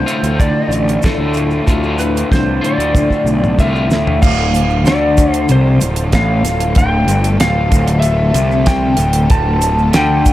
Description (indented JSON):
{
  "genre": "psychedelic rock",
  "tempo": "94 BPM",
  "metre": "4/4",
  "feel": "straight",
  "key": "D minor",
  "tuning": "A4 = 442 Hz",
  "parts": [
    { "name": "electric slide guitar", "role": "melody", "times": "0.0-10.3 s", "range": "A4 to A5", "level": "-18 LUFS", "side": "left 1 dB", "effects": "analog delay" },
    { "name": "rich studio string section", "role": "sustained chords", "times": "0.0-10.3 s", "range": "D3 to A4", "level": "-26 LUFS", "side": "right 3 dB", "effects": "none" },
    { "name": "electric guitar at the edge of break-up", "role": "riff", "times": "0.0-10.3 s", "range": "D2 to F4", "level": "-17 LUFS", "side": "left 1 dB", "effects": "harmonic tremolo, analog delay" },
    { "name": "fuzz picked electric bass", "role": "bass", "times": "0.0-10.3 s", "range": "D1 to D2", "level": "-16 LUFS", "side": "equal", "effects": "overdrive" },
    { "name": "damped 70s drum kit", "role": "drums", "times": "0.1-10.3 s", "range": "crash cymbal, hi-hat, kick drum, snare drum, toms", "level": "-15 LUFS", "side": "equal", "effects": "none" },
    { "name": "tube shaker", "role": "percussion", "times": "0.1-10.3 s", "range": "none", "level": "-32 LUFS", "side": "right 6 dB", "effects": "none" }
  ],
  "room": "studio ambience",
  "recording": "echo-heavy mix",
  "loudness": "-11 LUFS",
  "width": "side -14 dB against mid",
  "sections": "0.0-4.2 A section; 4.2-10.3 B section",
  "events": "drum fill 3.0-4.2",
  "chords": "0.0 Dm",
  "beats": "0.40 1.04 | 1.68 2.31 2.95 3.59 | 4.23 4.86 5.50 6.13 | 6.77 7.41 8.04 8.67 | 9.30 9.94"
}